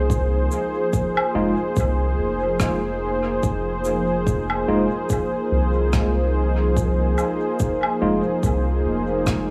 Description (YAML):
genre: ambient dub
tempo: 72 BPM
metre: 4/4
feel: swing 56% on 16ths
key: F minor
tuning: A4 = 440 Hz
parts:
  - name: warm analog pad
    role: sustained chords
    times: 0.0-9.5 s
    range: F3 to C5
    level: -25 LUFS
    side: equal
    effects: chorus
  - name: soft dub sub bass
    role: bass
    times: 0.0-9.5 s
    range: F1 to C2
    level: -26 LUFS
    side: equal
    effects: none
  - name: electronic kick drum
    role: drums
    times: 0.1-9.5 s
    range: none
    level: -27 LUFS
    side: equal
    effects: none
  - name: shaker, woodblock and rim click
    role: drums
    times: 0.1-9.5 s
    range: none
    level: -30 LUFS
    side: equal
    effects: dub echo
  - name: tine electric piano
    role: stabs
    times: 1.4-8.2 s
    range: Ab3 to F4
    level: -27 LUFS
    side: equal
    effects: overdrive, medium tremolo, dub echo
room: light reverb, small room reverb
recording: echo-heavy mix, small room ambience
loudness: -21 LUFS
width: mono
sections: 0.0-9.5 A section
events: none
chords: 0.0 Fm7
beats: | 0.10 0.93 1.77 2.60 | 3.43 4.27 5.10 5.93 | 6.77 7.60 8.43 9.27